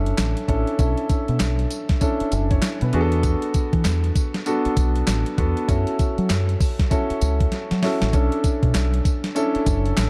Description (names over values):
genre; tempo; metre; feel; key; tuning
R&B, new jack swing; 98 BPM; 4/4; swing 62% on 16ths; B minor; A4 = 441 Hz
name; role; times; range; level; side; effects
warm concert grand piano; accompaniment; 0.0-10.1 s; B3 to C#5; -26 LUFS; equal; shimmer reverb
deep dub fingered electric bass; bass; 0.0-10.1 s; F#1 to F#3; -24 LUFS; equal; none
crisp 8-bit digital drum machine; drums; 0.1-10.1 s; handclaps, hi-hat, kick drum, snare drum, tambourine; -25 LUFS; equal; none
room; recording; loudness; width
light reverb; dark, warm production; -21 LUFS; mono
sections
0.0-10.1 A section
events
drum fill 7.5-8.1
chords
0.0 Bm11; 2.9 E7sus4; 5.7 F#m7; 8.1 Bm11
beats
0.18 | 0.79 1.40 2.01 2.62 | 3.24 3.85 4.46 5.07 | 5.69 6.30 6.91 7.52 | 8.13 8.75 9.36 9.97